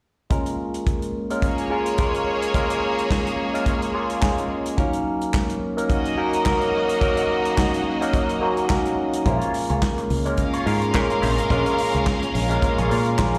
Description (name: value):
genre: disco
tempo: 107 BPM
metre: 4/4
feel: swing 56% on 16ths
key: Bb minor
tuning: A4 = 440 Hz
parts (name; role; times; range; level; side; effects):
- barky tine electric piano; accompaniment; 0.3-13.4 s; Gb3 to Bb4; -25 LUFS; equal; overdrive, phaser, slapback echo
- warm soul drum kit; drums; 0.3-13.4 s; handclaps, hi-hat, kick drum, snare drum; -27 LUFS; equal; none
- clear studio violin section; second line; 1.4-13.4 s; Bb3 to F5; -29 LUFS; equal; slapback echo
- semi-hollow electric guitar; accompaniment; 9.3-13.4 s; F4 to Db5; -35 LUFS; equal; wah, slapback echo
- fingered electric bass; bass; 9.3-13.4 s; Ab1 to Bb2; -26 LUFS; equal; none
room: light reverb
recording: live gig heard through the venue's PA, recital hall reverb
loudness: -22 LUFS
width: mono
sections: 0.3-13.4 A section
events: none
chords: 0.3 Bbm7; 4.8 Ebm7; 9.3 Bbm7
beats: | 0.31 0.87 1.43 1.98 | 2.54 3.10 3.66 4.22 | 4.78 5.34 5.90 6.46 | 7.02 7.58 8.14 8.70 | 9.26 9.82 10.38 10.95 | 11.51 12.07 12.63 13.19